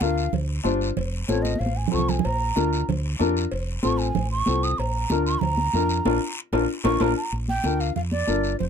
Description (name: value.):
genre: latin, cumbia.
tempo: 189 BPM.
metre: 4/4.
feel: straight.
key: Bb major.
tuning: A4 = 437 Hz.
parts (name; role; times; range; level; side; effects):
breathy mellow bansuri; melody; 0.0-8.7 s; C5 to Eb6; -27 LUFS; right 3 dB; none.
dark upright piano; accompaniment; 0.0-8.5 s; C4 to C5; -25 LUFS; left 5 dB; none.
fingered electric bass; bass; 0.0-8.7 s; F1 to F2; -26 LUFS; right 1 dB; none.
congas; percussion; 0.0-8.7 s; none; -28 LUFS; right 3 dB; none.
guiro; percussion; 0.0-8.7 s; none; -36 LUFS; left 3 dB; none.
cowbell and timbales; percussion; 0.3-7.1 s; none; -35 LUFS; right 2 dB; none.
room: light reverb.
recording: close, detailed microphones.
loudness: -21 LUFS.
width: side -7 dB against mid.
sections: 0.0-7.3 A section; 7.3-8.7 B section.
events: bansuri solo 0.0-7.3; drum fill 1.4-2.2, 6.9-7.3; band accent 6.1-7.3.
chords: 0.0 Bb; 1.0 F; 2.2 Bb; 3.5 F; 4.8 Bb.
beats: 0.01 0.33 0.65 | 0.97 1.29 1.61 1.93 | 2.24 2.56 2.88 3.20 | 3.52 3.83 4.15 4.47 | 4.79 5.11 5.42 5.74 | 6.06 6.38 6.70 7.01 | 7.33 7.65 7.97 8.29 | 8.60.